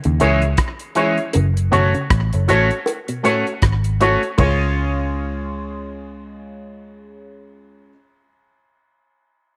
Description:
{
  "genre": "roots reggae",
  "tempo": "79 BPM",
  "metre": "4/4",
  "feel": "swing 58% on 16ths",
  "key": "unclear",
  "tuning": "A4 = 441 Hz",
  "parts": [
    { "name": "damped 70s drum kit", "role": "drums", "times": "0.0-4.6 s", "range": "hi-hat, kick drum, ride cymbal, rim click, toms", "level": "-22 LUFS", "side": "equal", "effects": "slapback echo" },
    { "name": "electric guitar with an envelope filter", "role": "arpeggios", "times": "0.1-4.6 s", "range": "G#2 to E3", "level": "-27 LUFS", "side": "equal", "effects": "none" },
    { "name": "vintage muted picked electric bass", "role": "bass", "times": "0.1-7.9 s", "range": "F#1 to D#2", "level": "-21 LUFS", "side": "equal", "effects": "none" },
    { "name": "electric guitar with an envelope filter", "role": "accompaniment", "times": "0.2-8.0 s", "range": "E3 to F#4", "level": "-25 LUFS", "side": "equal", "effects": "analog chorus, tape echo" },
    { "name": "clear upright piano", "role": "stabs", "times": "0.2-7.9 s", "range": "E4 to C#5", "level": "-24 LUFS", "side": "equal", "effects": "none" },
    { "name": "bongos", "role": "percussion", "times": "0.2-4.7 s", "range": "none", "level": "-28 LUFS", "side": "equal", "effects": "none" }
  ],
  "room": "light reverb, small room ambience",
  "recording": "none",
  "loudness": "-18 LUFS",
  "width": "mono",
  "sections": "0.0-4.4 A section; 4.4-7.4 B section",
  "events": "none",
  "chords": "0.0 C#m; 1.3 F#m; 4.4 C#",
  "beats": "0.58 | 1.34 2.10 2.86 3.62 | 4.38 5.14 5.90 6.66"
}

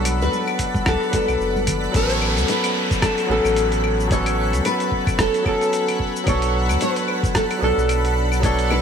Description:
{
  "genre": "sunset chillout",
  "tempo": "111 BPM",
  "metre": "4/4",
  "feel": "swing 57% on 16ths",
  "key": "A major",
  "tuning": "A4 = 440 Hz",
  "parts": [
    { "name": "nylon-string guitar", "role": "melody", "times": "0.0-8.8 s", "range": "F#4 to C#5", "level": "-23 LUFS", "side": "equal", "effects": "lush chorus, ping-pong delay" },
    { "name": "barky tine electric piano", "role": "accompaniment", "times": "0.0-8.8 s", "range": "F#3 to B4", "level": "-25 LUFS", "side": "equal", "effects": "auto-pan, ping-pong delay" },
    { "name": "shimmering ambient pad", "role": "sustained chords", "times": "0.0-8.8 s", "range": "D4 to B5", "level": "-27 LUFS", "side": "left 1 dB", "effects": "chorus, built-in reverb, phaser" },
    { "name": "warm sub bass", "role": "bass", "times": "0.0-8.8 s", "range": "E1 to D2", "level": "-22 LUFS", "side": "equal", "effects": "none" },
    { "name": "twinkling granular texture", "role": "texture", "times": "0.0-2.0 s", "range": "B5", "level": "-38 LUFS", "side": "equal", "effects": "none" },
    { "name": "dusty soul sampler-style drum kit", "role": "drums", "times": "0.1-8.8 s", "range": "cabasa, claves, hi-hat, rim click", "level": "-28 LUFS", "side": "left 1 dB", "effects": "overdrive" },
    { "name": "congas", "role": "percussion", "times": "0.3-1.8 s", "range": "none", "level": "-32 LUFS", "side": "right 1 dB", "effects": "none" },
    { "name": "electronic kick drum", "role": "drums", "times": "0.6-8.6 s", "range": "none", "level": "-23 LUFS", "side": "equal", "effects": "overdrive" },
    { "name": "downlifter", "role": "sound effects", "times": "1.9-6.3 s", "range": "none", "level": "-28 LUFS", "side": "equal", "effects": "none" }
  ],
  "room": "moderate lush hall reverb, RT60 2.2 s",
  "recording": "bright 1980s-style digital production",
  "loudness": "-17 LUFS",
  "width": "side -7 dB against mid",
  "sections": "0.0-1.9 A section; 1.9-8.8 B section",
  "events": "none",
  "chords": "0.0 Bm7; 1.9 A69; 6.3 Bm7",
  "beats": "0.32 0.86 1.40 | 1.95 2.49 3.03 3.57 | 4.11 4.65 5.19 5.73 | 6.27 6.81 7.35 7.89 | 8.43"
}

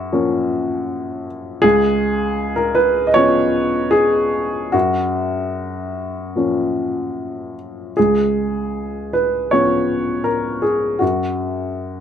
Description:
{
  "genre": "neoclassical minimalist piano",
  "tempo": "77 BPM",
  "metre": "4/4",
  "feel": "uneven beats, rubato",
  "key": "unclear",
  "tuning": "A4 = 440 Hz",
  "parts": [
    { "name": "dark upright piano", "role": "solo", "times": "0.0-12.0 s", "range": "C#2 to D#5", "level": "-16 LUFS", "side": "equal", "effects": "none" }
  ],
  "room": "light reverb",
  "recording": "close, detailed microphones",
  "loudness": "-16 LUFS",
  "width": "side -8 dB against mid",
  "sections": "0.0-12.0 A section",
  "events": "none",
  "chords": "0.0 F#maj7; 1.6 C#7; 4.7 F#maj7; 8.0 C#7; 11.0 N.C.",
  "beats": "0.13 0.89 | 1.64 2.39 3.15 3.93 | 4.74 5.55 6.35 7.15 | 7.97 8.74 9.52 10.28 | 11.02 11.77"
}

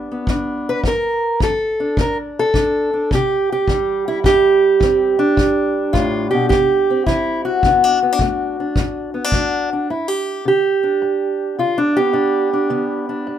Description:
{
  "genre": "acoustic country blues, solo or duo",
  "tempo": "106 BPM",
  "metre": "4/4",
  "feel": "swing 67% on 8ths",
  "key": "G major",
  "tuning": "A4 = 439 Hz",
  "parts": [
    { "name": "fingerpicked steel-string acoustic guitar", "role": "melody", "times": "0.0-13.4 s", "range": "G2 to B4", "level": "-16 LUFS", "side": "right 1 dB", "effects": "none" },
    { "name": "kick drum", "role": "drums", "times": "0.3-9.5 s", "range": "none", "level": "-20 LUFS", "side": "equal", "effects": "none" }
  ],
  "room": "moderate small room reverb, RT60 0.5 s",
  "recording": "minimal, uncompressed stereo recording",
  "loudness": "-15 LUFS",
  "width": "side -10 dB against mid",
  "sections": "0.0-9.9 A section; 9.9-13.4 B section",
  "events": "steel-string acoustic guitar solo 9.9-13.4",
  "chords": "0.0 G; 0.9 D; 3.1 C; 5.4 G5; 6.5 C; 7.6 D; 9.9 G",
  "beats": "0.29 | 0.85 1.42 1.98 2.55 | 3.11 3.68 4.24 4.81 | 5.37 5.94 6.50 7.07 | 7.63 8.20 8.76 9.32 | 9.89 10.45 11.02 11.58 | 12.15 12.71 13.27"
}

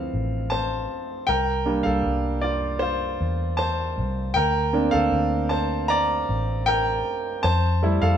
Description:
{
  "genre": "pop ballad",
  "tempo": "78 BPM",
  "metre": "4/4",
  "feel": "straight",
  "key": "unclear",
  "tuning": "A4 = 440 Hz",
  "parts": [
    { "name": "clear concert grand piano", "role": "accompaniment", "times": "0.0-8.2 s", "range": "E3 to Bb5", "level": "-22 LUFS", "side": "right 1 dB", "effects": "none" },
    { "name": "vintage muted fingered electric bass", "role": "bass", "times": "0.0-8.2 s", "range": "A1 to F2", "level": "-26 LUFS", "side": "left 1 dB", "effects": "none" }
  ],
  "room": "moderate stone room reverb, RT60 0.9 s",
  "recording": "band playing live in one room",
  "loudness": "-21 LUFS",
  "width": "side -9 dB against mid",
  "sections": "0.0-8.2 A section",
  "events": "grand piano solo 0.0-8.2",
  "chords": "0.0 Dm7 (rootless); 1.3 C7sus4; 4.4 Bbmaj7/D; 7.4 Fmaj7",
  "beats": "0.51 | 1.28 2.05 2.82 3.59 | 4.36 5.13 5.90 6.67 | 7.43"
}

